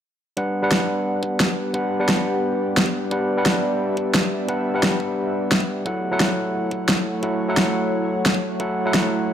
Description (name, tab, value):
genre	liquid drum and bass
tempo	175 BPM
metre	4/4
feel	straight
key	G lydian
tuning	A4 = 439 Hz
part	overdriven tine electric piano	accompaniment	0.4-9.3 s	F#3 to F#5	-23 LUFS	equal	dub echo
part	airy breathy pad	sustained chords	0.4-9.3 s	A3 to F#5	-27 LUFS	equal	chorus, sidechain pumping
part	electronic kick drum	drums	0.4-8.7 s	none	-33 LUFS	equal	overdrive, high-pass filter on kick
part	electronic snare drum	drums	0.7-9.0 s	none	-20 LUFS	equal	overdrive
room	moderate digital room reverb, RT60 1.0 s, digital ambience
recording	none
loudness	-19 LUFS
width	side -9 dB against mid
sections	0.4-9.3 A section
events	none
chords	0.4 Gmaj7; 5.9 F#m7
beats	| 0.37 0.71 1.06 1.40 | 1.74 2.08 2.43 2.77 | 3.11 3.46 3.80 4.14 | 4.49 4.83 5.17 5.51 | 5.86 6.20 6.54 6.88 | 7.23 7.57 7.91 8.26 | 8.60 8.94 9.29